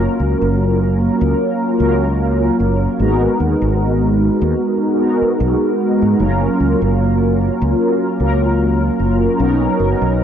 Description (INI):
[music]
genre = vaporwave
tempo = 75 BPM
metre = 4/4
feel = swing 55% on 16ths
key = F# major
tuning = A4 = 440 Hz
[part]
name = mellow synth brass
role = accompaniment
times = 0.0-10.2 s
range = F#3 to A#4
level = -15 LUFS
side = equal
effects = ensemble chorus, tape echo
[part]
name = fretless electric bass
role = bass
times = 0.0-10.2 s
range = F#1 to G#2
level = -18 LUFS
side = equal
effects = analog chorus
[sound]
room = light reverb, digital ambience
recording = dark, warm production, cassette tape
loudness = -13 LUFS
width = side -8 dB against mid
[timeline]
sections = 0.0-10.2 A section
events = none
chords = 0.0 F#maj7; 3.0 G#m9; 6.2 F#maj7; 9.4 Bmaj9